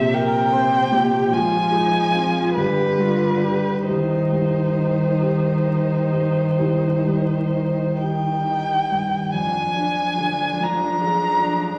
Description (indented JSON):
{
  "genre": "classical, slow romantic movement for piano quartet",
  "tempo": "41-52 BPM (dotted quarters)",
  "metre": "12/8",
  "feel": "rubato",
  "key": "C minor",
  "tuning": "A4 = 442 Hz",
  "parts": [
    { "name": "warm violin", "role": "melody", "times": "0.0-11.8 s", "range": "B4 to Bb5", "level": "-24 LUFS", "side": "equal", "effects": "none" },
    { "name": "warm cello", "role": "second line", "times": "0.0-11.8 s", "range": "C3 to F3", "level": "-26 LUFS", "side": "equal", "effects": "none" },
    { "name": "warm grand piano", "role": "accompaniment", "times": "0.0-11.8 s", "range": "Bb1 to Ab4", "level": "-27 LUFS", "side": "equal", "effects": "none" },
    { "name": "warm viola", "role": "accompaniment", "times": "0.0-11.8 s", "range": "D4 to C5", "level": "-30 LUFS", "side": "equal", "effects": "none" }
  ],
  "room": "wet recital hall reverb, RT60 1.3 s",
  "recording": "vinyl crackle",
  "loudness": "-20 LUFS",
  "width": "mono",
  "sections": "0.0-9.3 A section; 9.3-11.8 B section",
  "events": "none",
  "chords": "0.0 C7(no3)/Bb; 1.3 Fm/Ab; 2.6 G; 3.9 Cm; 9.3 Ddim/F",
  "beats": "0.15 1.33 2.57 | 3.88 5.21 6.58 8.01 | 9.35 10.62"
}